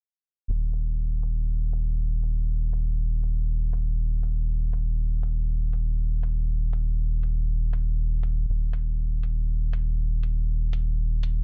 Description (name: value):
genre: melodic techno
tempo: 120 BPM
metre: 4/4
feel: straight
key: unclear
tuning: A4 = 440 Hz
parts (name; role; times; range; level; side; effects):
- round analog bass; bass; 0.5-11.4 s; Eb1; -27 LUFS; equal; tube saturation
- electronic hi-hat; drums; 0.7-11.3 s; none; -52 LUFS; equal; low-pass filter on hats, low-pass filter on room
room: little or no reverb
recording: low-pass filter, nothing above 10.3 kHz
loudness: -27 LUFS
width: mono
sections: 0.5-11.4 A section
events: filter sweep on drum 0.5-11.4; filter sweep 0.5-11.4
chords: none